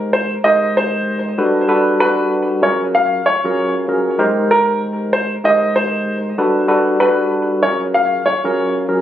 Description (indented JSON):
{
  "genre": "hip hop",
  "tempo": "96 BPM",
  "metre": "4/4",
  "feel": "swing 59% on 16ths",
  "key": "unclear",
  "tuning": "A4 = 442 Hz",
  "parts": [
    { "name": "tine electric piano", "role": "accompaniment", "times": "0.0-9.0 s", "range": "Gb3 to C5", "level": "-16 LUFS", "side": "equal", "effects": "medium stereo tremolo, cassette tape, high-pass filter, low-pass filter" },
    { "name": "clear upright piano", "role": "melody", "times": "0.1-8.7 s", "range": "Bb4 to F5", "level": "-16 LUFS", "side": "equal", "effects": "high-pass filter, low-pass filter, ping-pong delay" }
  ],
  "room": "moderate small room reverb, RT60 0.5 s",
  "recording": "recorded on a phone in the room, club reverb, compression",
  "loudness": "-14 LUFS",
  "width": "side -11 dB against mid",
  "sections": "0.0-9.0 A section",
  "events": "none",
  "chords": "0.0 Abmaj9; 1.4 Gmaj9; 2.6 Gbmaj9; 4.2 Abmaj9; 6.4 Gmaj9; 7.6 Gbmaj9",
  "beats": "0.44 1.07 | 1.69 2.32 2.94 3.57 | 4.19 4.82 5.44 6.07 | 6.69 7.32 7.94 8.57"
}